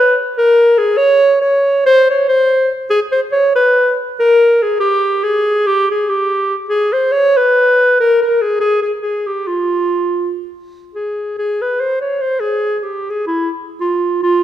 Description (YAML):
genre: balkan folk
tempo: 283 BPM (eighths)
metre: 9/8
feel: straight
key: unclear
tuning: A4 = 442 Hz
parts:
  - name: mellow clarinet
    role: solo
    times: 0.0-14.4 s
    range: E4 to Db5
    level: -12 LUFS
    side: equal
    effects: none
room: moderate concert hall reverb, RT60 1.9 s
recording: minimal, uncompressed stereo recording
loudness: -12 LUFS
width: side -11 dB against mid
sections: 0.0-10.5 A section; 10.5-14.4 B section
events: clarinet solo 10.5-14.4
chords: none